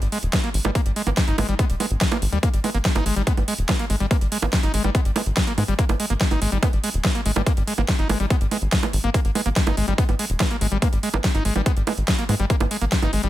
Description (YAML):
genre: psychedelic trance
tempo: 143 BPM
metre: 4/4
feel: straight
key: G# harmonic minor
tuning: A4 = 443 Hz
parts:
  - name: tight sequencer bass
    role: bass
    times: 0.0-13.3 s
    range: D#1 to G#2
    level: -22 LUFS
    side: equal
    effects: tube saturation
  - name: big-room dance drum kit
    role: drums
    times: 0.0-13.3 s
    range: bongos, hi-hat, snare drum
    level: -26 LUFS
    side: right 2 dB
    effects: none
  - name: screaming distorted acid line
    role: riff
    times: 0.1-13.3 s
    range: G3 to D#4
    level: -27 LUFS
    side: left 1 dB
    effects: distortion, chorus, auto-pan, sidechain pumping, digital delay
  - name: electronic kick drum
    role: drums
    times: 0.3-13.0 s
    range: none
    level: -22 LUFS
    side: equal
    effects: none
room: digital ambience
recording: none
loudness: -19 LUFS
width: side -14 dB against mid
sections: 0.0-13.3 A section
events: none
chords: 0.0 G#5